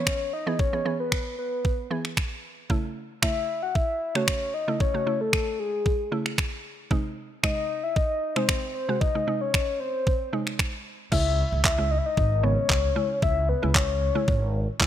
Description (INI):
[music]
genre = dance-pop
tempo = 114 BPM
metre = 4/4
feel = straight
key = C# minor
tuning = A4 = 440 Hz
[part]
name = soft octave-layered synth lead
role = melody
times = 0.0-14.8 s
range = G#4 to F#5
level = -27 LUFS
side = left 3 dB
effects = chorus, tape echo
[part]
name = mallet-like synth pluck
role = accompaniment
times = 0.0-14.9 s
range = B#2 to B4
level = -31 LUFS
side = right 2 dB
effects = chorus
[part]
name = detuned 8-bit digital drum machine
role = drums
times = 0.1-14.9 s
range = crash cymbal, finger snaps, handclaps, kick drum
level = -25 LUFS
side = equal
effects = none
[part]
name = upright bass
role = bass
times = 11.1-14.9 s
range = G#1 to C#2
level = -26 LUFS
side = equal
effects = sidechain pumping
[sound]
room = light reverb, digital ambience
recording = none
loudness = -23 LUFS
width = side -11 dB against mid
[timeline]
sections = 0.0-11.1 A section; 11.1-14.9 B section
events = none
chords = 0.0 E; 2.7 A; 6.9 G#; 11.1 C#m